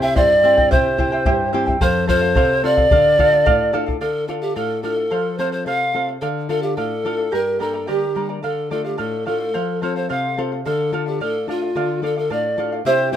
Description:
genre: andean folk, Andean ensemble.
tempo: 109 BPM.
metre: 2/4.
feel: straight.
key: D minor.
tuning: A4 = 445 Hz.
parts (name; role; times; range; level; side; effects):
bright polished pan flute; melody; 0.0-13.2 s; F4 to F5; -18 LUFS; equal; none.
charango; accompaniment; 0.0-13.2 s; E4 to Bb5; -24 LUFS; right 4 dB; none.
nylon-string guitar; accompaniment; 0.0-13.2 s; F2 to A4; -25 LUFS; left 5 dB; none.
bombo; percussion; 0.2-4.0 s; none; -21 LUFS; left 1 dB; none.
room: light reverb.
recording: minimal, uncompressed stereo recording.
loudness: -16 LUFS.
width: side -10 dB against mid.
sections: 0.0-4.0 A section; 4.0-12.9 B section.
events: none.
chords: 0.0 C; 1.8 F; 2.9 Dm; 5.1 F; 6.2 Dm; 7.3 Gm; 8.4 Dm; 9.5 F; 10.6 Dm.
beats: 0.16 | 0.71 1.26 | 1.81 2.36 | 2.91 3.46 | 4.01 4.57 | 5.12 5.67 | 6.22 6.78 | 7.33 7.88 | 8.44 8.99 | 9.54 10.09 | 10.65 11.20 | 11.75 12.30 | 12.85.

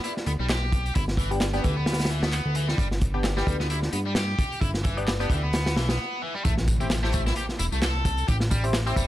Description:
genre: breakbeat, breaks.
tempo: 131 BPM.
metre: 4/4.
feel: swing 56% on 16ths.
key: unclear.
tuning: A4 = 443 Hz.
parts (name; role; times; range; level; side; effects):
biting overdriven guitar; riff; 0.0-9.1 s; E3 to A4; -31 LUFS; left 1 dB; tube saturation, vintage 12-bit sampler grit, digital delay.
crunchy breakbeat drum kit; drums; 0.0-9.1 s; hi-hat, kick drum, snare drum; -27 LUFS; equal; none.
fat analog bass; bass; 0.3-9.1 s; E1 to G2; -27 LUFS; equal; none.
electronic handclaps and tambourine; drums; 0.5-9.1 s; none; -36 LUFS; equal; none.
band-passed chord stab; stabs; 1.3-9.0 s; B3 to G4; -32 LUFS; left 2 dB; chorus, phaser, digital delay.
impact; sound effects; 6.4-8.3 s; none; -32 LUFS; equal; none.
room: small room ambience.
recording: dark, warm production.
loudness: -23 LUFS.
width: side -14 dB against mid.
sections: 0.0-6.4 A section; 6.4-9.1 B section.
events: filter sweep on synth stab 0.0-6.4; break 6.0-6.4; drop 6.4-9.1; impact 6.4-8.3.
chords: 0.0 G; 6.4 Am7.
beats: 0.04 0.49 | 0.95 1.41 1.87 2.33 | 2.78 3.24 3.70 4.16 | 4.62 5.07 5.53 5.99 | 6.45 6.91 7.36 7.82 | 8.28 8.74.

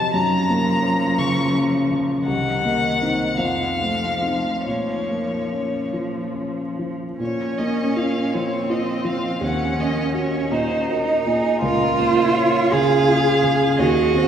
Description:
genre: classical, slow romantic movement for piano trio.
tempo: 45-59 BPM (dotted quarters).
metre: 6/8.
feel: rubato.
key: Bb minor.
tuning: A4 = 439 Hz.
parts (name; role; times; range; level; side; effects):
rich violin; melody; 0.0-14.3 s; Ab4 to Db6; -25 LUFS; left 2 dB; none.
clear cello; second line; 0.0-14.3 s; Eb3 to Ab4; -22 LUFS; right 3 dB; none.
dark grand piano; accompaniment; 0.0-14.3 s; C2 to Gb4; -22 LUFS; left 1 dB; none.
room: wet church reverb, RT60 3.8 s.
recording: recorded in a church or concert hall.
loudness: -18 LUFS.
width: side -8 dB against mid.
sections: 0.0-7.2 A section; 7.2-14.3 A section.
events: none.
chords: 0.1 Gbmaj7; 2.3 Cm7b5; 3.4 F7; 4.6 Bbm; 9.4 Ebm7; 11.6 Bbm/Db.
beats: | 0.15 1.18 | 2.26 3.40 | 4.65 5.92 | 7.20 8.33 | 9.41 10.52 | 11.63 12.71 | 13.79.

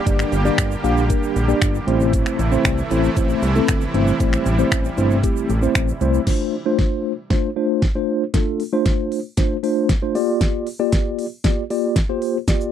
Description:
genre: dance-pop.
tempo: 116 BPM.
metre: 4/4.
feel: straight.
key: D minor.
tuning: A4 = 444 Hz.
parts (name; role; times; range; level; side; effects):
supersaw pad; sustained chords; 0.0-6.2 s; C3 to G4; -25 LUFS; right 2 dB; sidechain pumping.
mellow tine electric piano; accompaniment; 0.1-12.7 s; A3 to F5; -20 LUFS; left 1 dB; medium stereo tremolo, sidechain pumping.
fat analog bass; bass; 0.1-6.2 s; G1 to C2; -20 LUFS; equal; sidechain pumping.
pop drum kit; drums; 0.1-12.7 s; crash cymbal, finger snaps, hi-hat, kick drum, shaker, snare drum; -20 LUFS; equal; none.
tube shaker; percussion; 0.1-6.3 s; none; -41 LUFS; right 23 dB; none.
room: little or no reverb.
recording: dry, close 1970s-style studio recording.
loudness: -17 LUFS.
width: side -9 dB against mid.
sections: 0.0-6.3 A section; 6.3-12.7 B section.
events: build-up 6.3-12.7; drum fill 6.3-12.7.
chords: 0.0 Gm; 1.9 Am; 6.3 Dm7; 10.2 Bb6.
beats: | 0.07 0.58 1.10 1.62 | 2.13 2.65 3.17 3.69 | 4.20 4.72 5.24 5.75 | 6.27 6.79 7.31 7.82 | 8.34 8.86 9.38 9.89 | 10.41 10.93 11.44 11.96 | 12.48.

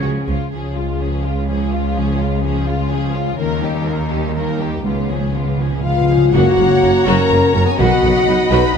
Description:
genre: cinematic, heroic adventure film score.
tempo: 124 BPM.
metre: 3/4.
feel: straight.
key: Db major.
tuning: A4 = 440 Hz.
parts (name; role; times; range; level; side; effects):
warm symphonic violin section; melody; 0.0-8.8 s; F4 to B5; -26 LUFS; left 3 dB; none.
warm symphonic violin section; second line; 0.0-8.8 s; Bb3 to B5; -25 LUFS; left 3 dB; none.
rich symphonic viola section; accompaniment; 0.0-8.8 s; Eb3 to F#4; -25 LUFS; right 2 dB; none.
mellow French horn section; sustained chords; 0.0-0.3, 5.8-8.6 s; Ab3 to B4; -16 LUFS; left 2 dB; none.
mellow trombone section; sustained chords; 0.0-0.3, 6.3-8.0 s; Db3 to B3; -29 LUFS; right 2 dB; none.
concert harp; arpeggios; 0.0-8.8 s; F#2 to F#5; -23 LUFS; left 7 dB; none.
clear symphonic cello section; bass; 0.0-8.6 s; Db2 to Db3; -24 LUFS; right 3 dB; none.
rich symphonic double bass section; bass; 0.0-8.8 s; F#1 to Eb2; -22 LUFS; right 3 dB; none.
timpani; percussion; 4.9-7.0 s; F#2 to Db3; -22 LUFS; equal; none.
mellow clarinet; second line; 5.8-8.8 s; F#3 to D#4; -24 LUFS; left 2 dB; none.
mellow hollow flute section; second line; 5.8-8.8 s; D#5 to B5; -23 LUFS; left 3 dB; none.
warm tuba; bass; 6.3-8.6 s; F#1 to B1; -23 LUFS; right 5 dB; none.
room: moderate scoring stage reverb, RT60 2.0 s.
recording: none.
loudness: -14 LUFS.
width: side -6 dB against mid.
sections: 0.5-6.3 A section; 6.3-8.8 B section.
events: timpani fill 4.9-6.3.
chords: 0.0 Db; 3.4 Eb; 4.9 Db7; 6.3 F#; 7.8 B.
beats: 0.04 | 0.53 1.01 1.49 | 1.97 2.45 2.92 | 3.40 3.88 4.36 | 4.86 5.36 5.85 | 6.35 6.83 7.31 | 7.79 8.27 8.75.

